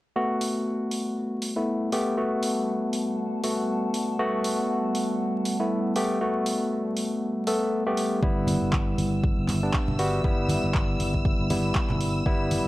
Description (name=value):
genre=deep house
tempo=119 BPM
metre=4/4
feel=swing 57% on 16ths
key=G major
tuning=A4 = 440 Hz
part: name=barky tine electric piano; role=stabs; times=0.2-12.7 s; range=G3 to A4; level=-26 LUFS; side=left 1 dB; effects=overdrive, vintage 12-bit sampler grit, sidechain pumping, low-pass filter
part: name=warbly tape-like pad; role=texture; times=1.3-12.7 s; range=G3 to B5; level=-34 LUFS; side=right 1 dB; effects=chorus, built-in reverb, sidechain pumping
part: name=punchy analog drum machine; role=drums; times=0.4-12.6 s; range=handclaps, hi-hat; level=-34 LUFS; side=right 1 dB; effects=none
part: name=fingered electric bass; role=bass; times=8.2-12.7 s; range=G1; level=-29 LUFS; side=equal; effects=none
part: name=electronic kick drum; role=drums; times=8.2-12.4 s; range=none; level=-25 LUFS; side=equal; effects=overdrive
part: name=string machine, violins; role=texture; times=8.2-12.7 s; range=E6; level=-36 LUFS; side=equal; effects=ensemble chorus
part: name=congas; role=percussion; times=8.5-12.6 s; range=none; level=-32 LUFS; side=right 1 dB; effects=none
room=light reverb, digital ambience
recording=dry, gritty hardware recording, vinyl crackle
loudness=-23 LUFS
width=side -17 dB against mid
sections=0.2-12.7 A section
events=none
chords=0.2 Gmaj9; 8.2 Gmaj7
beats=| 0.16 0.66 1.17 1.67 | 2.18 2.68 3.18 3.69 | 4.19 4.70 5.20 5.71 | 6.21 6.71 7.22 7.72 | 8.23 8.73 9.23 9.74 | 10.24 10.75 11.25 11.76 | 12.26